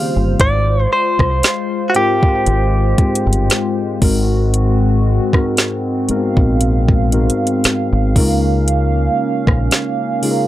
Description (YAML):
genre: contemporary R&B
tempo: 58 BPM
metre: 4/4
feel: swing 54% on 16ths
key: unclear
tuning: A4 = 438 Hz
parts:
  - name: direct-recorded clean electric guitar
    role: melody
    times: 0.0-4.0 s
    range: Gb4 to F5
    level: -18 LUFS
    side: equal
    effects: harmonic tremolo, tape echo
  - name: mellow tine electric piano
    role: accompaniment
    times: 0.0-10.5 s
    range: Ab2 to Bb4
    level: -19 LUFS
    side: left 2 dB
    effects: none
  - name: hollow soft pad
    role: sustained chords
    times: 0.0-10.5 s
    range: Db3 to F5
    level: -20 LUFS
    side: right 1 dB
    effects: chorus
  - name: deep dub fingered electric bass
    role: bass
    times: 0.2-9.7 s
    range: G1 to Db2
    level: -16 LUFS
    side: equal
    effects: none
  - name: smooth R&B drum kit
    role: drums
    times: 0.4-10.5 s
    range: hi-hat, kick drum, rim click, snare drum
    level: -15 LUFS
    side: equal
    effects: none
room: little or no reverb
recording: dry, gritty hardware recording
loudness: -13 LUFS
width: side -14 dB against mid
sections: 0.0-10.5 A section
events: none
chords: 0.4 Ab6; 4.0 Ab7; 8.2 Db69